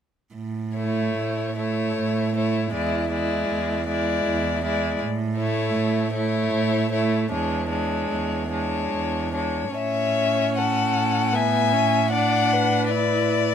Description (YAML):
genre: classical, slow romantic movement for string quartet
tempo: 70-82 BPM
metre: 3/4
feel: rubato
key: A major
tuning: A4 = 441 Hz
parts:
  - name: warm cello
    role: bass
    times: 0.3-13.5 s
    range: E2 to A2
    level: -27 LUFS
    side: right 4 dB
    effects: none
  - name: warm violin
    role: melody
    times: 0.8-13.5 s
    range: C#5 to G#5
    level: -26 LUFS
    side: left 8 dB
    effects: none
  - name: warm violin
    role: second line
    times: 0.8-13.5 s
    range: D4 to E5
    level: -27 LUFS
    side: left 1 dB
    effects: none
  - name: warm viola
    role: accompaniment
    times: 0.8-13.5 s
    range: G#3 to E4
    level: -27 LUFS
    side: right 3 dB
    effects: none
room: light reverb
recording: none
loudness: -21 LUFS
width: side -8 dB against mid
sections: 0.3-9.8 A section; 9.8-13.5 B section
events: none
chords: 0.3 A; 2.7 E7; 5.0 A; 7.3 E6; 9.8 A; 12.1 Bm7/A